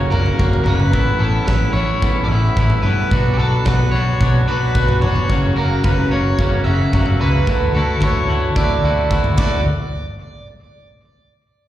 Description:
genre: indie rock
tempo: 110 BPM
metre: 4/4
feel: straight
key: D major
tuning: A4 = 440 Hz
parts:
  - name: overdriven semi-hollow guitar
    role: melody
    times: 0.0-9.6 s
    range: G4 to E5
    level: -23 LUFS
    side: right 2 dB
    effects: plate reverb, slapback echo, digital delay
  - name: dark brass ensemble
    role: sustained chords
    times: 0.0-9.6 s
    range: D4 to B5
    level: -30 LUFS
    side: right 2 dB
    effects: none
  - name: twangy electric guitar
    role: riff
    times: 0.0-9.6 s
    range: F#2 to F#4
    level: -21 LUFS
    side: left 1 dB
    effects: slapback echo
  - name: picked electric bass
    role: bass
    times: 0.0-9.6 s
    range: F1 to G2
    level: -18 LUFS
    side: equal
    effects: none
  - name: big rock drum kit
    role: drums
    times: 0.1-9.5 s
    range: crash cymbal, kick drum, snare drum, toms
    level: -20 LUFS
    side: equal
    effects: none
room: little or no reverb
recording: live gig heard through the venue's PA, recital hall reverb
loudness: -14 LUFS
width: side -13 dB against mid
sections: 0.0-9.6 A section; 9.6-11.7 B section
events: none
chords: 0.0 F#; 0.9 Aadd9; 3.1 Bm; 5.3 F#; 7.5 Dadd9; 9.6 N.C.

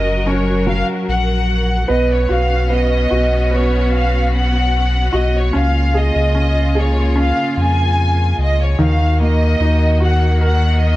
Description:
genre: pop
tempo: 74 BPM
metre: 4/4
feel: straight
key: unclear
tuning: A4 = 441 Hz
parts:
  - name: dark studio violin section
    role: melody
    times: 0.0-11.0 s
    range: C#5 to G#5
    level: -20 LUFS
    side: left 1 dB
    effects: none
  - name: clear concert grand piano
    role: accompaniment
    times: 0.0-11.0 s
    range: D#3 to A#4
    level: -21 LUFS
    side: right 2 dB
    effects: none
  - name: clear studio string section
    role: sustained chords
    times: 0.0-11.0 s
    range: C#3 to A#4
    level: -23 LUFS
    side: left 1 dB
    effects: none
  - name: sub bass with octave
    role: bass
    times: 0.0-11.0 s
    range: F#1 to E#2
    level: -16 LUFS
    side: equal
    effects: none
room: light reverb, small room ambience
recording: dark, warm production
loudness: -13 LUFS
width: side -16 dB against mid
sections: 0.0-11.0 A section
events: none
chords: 0.0 F#; 1.9 Bsus2; 5.5 C#6; 8.8 D#m

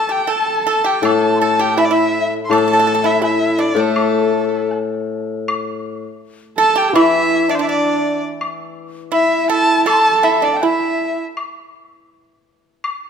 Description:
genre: chinese traditional, Chinese chamber ensemble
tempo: 81 BPM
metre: 2/4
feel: rubato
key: unclear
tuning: A4 = 440 Hz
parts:
  - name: clear erhu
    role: melody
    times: 0.0-11.2 s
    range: A4 to C6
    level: -19 LUFS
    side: equal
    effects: none
  - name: mellow hollow large dizi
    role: second line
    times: 0.0-11.2 s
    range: A4 to C6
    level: -21 LUFS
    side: left 7 dB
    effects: none
  - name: pipa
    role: second line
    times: 0.0-11.1 s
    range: A3 to A4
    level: -21 LUFS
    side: right 6 dB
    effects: none
  - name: rich horsehead fiddle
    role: second line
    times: 0.0-11.2 s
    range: A3 to A4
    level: -20 LUFS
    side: right 5 dB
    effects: none
  - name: woodblock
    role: percussion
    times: 0.3-13.0 s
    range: none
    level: -26 LUFS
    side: left 2 dB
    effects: none
  - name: hammered dulcimer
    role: accompaniment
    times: 1.0-9.1 s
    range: A2 to E3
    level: -20 LUFS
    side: left 6 dB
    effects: none
room: moderate scoring stage reverb, RT60 1.7 s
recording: minimal, uncompressed stereo recording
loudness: -14 LUFS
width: side -7 dB against mid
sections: 0.0-5.5 A section; 5.5-13.1 B section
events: none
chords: none

